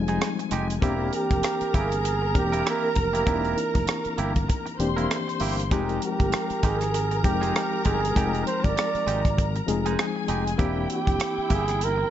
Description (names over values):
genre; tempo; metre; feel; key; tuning
lush 1970s-style soul; 98 BPM; 4/4; swing 58% on 16ths; F dorian; A4 = 440 Hz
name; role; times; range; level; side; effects
warm studio string section; second line; 0.0-12.1 s; Ab3 to C6; -32 LUFS; left 1 dB; none
reed electric piano; accompaniment; 0.0-12.1 s; E3 to G5; -29 LUFS; left 4 dB; fast tremolo
fingered electric bass; bass; 0.0-12.0 s; E1 to Ab1; -29 LUFS; equal; none
twangy electric guitar; riff; 0.1-12.0 s; Ab3 to Bb4; -33 LUFS; right 6 dB; none
tight funk drum kit; drums; 0.1-12.0 s; hi-hat, kick drum, rim click; -27 LUFS; equal; none
breathy flugelhorn; melody; 1.2-12.1 s; G4 to D5; -27 LUFS; right 4 dB; none
room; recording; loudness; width
light reverb, small room ambience; nothing above 7.9 kHz; -22 LUFS; side -11 dB against mid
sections
0.0-12.1 A section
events
none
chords
0.0 Fm9; 0.8 C7/E; 5.7 Fm9; 10.6 C7/E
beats
0.21 | 0.83 1.44 2.05 2.66 | 3.27 3.88 4.50 5.11 | 5.72 6.33 6.94 7.55 | 8.16 8.77 9.38 9.98 | 10.59 11.20 11.81